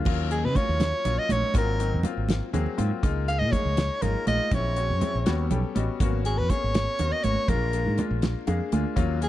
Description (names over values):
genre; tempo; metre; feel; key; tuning
electric jazz fusion; 81 BPM (dotted quarters); 6/8; straight; Eb minor; A4 = 440 Hz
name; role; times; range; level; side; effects
bright concert grand piano; accompaniment; 0.0-9.3 s; Gb3 to Ab5; -32 LUFS; left 7 dB; none
mellow fretless electric bass; bass; 0.0-9.3 s; Ab1 to Db3; -26 LUFS; equal; wide subtle chorus
damped 70s drum kit; drums; 0.1-9.3 s; crash cymbal, hi-hat, kick drum, snare drum; -28 LUFS; equal; none
congas; percussion; 0.1-9.1 s; none; -30 LUFS; right 4 dB; none
bright soprano saxophone; melody; 0.3-9.3 s; Ab4 to F5; -28 LUFS; equal; none
room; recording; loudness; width
small room ambience; dark, warm production; -23 LUFS; side -14 dB against mid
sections
0.1-9.3 A section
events
grand piano fill 5.3-6.0, 8.2-9.0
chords
0.1 Ebm9; 1.5 Ab13; 3.0 Db69; 4.5 Bbm7b5; 5.3 Eb7alt; 6.0 Abm11; 7.5 Bb7